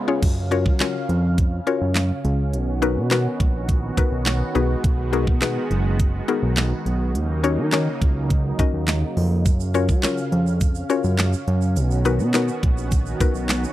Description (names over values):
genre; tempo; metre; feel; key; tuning
dance-pop; 104 BPM; 4/4; straight; F# major; A4 = 440 Hz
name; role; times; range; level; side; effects
filtered supersaw swell; sustained chords; 0.0-13.7 s; C#3 to E#5; -29 LUFS; right 2 dB; sidechain pumping
mallet-like synth pluck; accompaniment; 0.1-13.7 s; B3 to D#5; -24 LUFS; left 5 dB; chorus, sidechain pumping
fat analog bass; bass; 0.2-13.7 s; F#1 to F#3; -22 LUFS; equal; sidechain pumping
pop drum kit; drums; 0.2-13.6 s; crash cymbal, handclaps, hi-hat, kick drum, snare drum; -21 LUFS; right 1 dB; none
tube shaker; percussion; 9.5-13.7 s; none; -39 LUFS; right 18 dB; none
room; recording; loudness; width
little or no reverb; dry, close 1970s-style studio recording; -18 LUFS; side -14 dB against mid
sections
0.2-13.7 A section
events
break 0.0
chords
0.2 F#maj7; 2.5 Bmaj7; 4.6 G#m7; 7.1 D#m7; 9.5 F#maj7; 11.8 Bmaj7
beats
| 0.23 0.80 1.38 1.96 | 2.53 3.11 3.69 4.26 | 4.84 5.42 6.00 6.57 | 7.15 7.73 8.30 8.88 | 9.46 10.03 10.61 11.19 | 11.76 12.34 12.92 13.49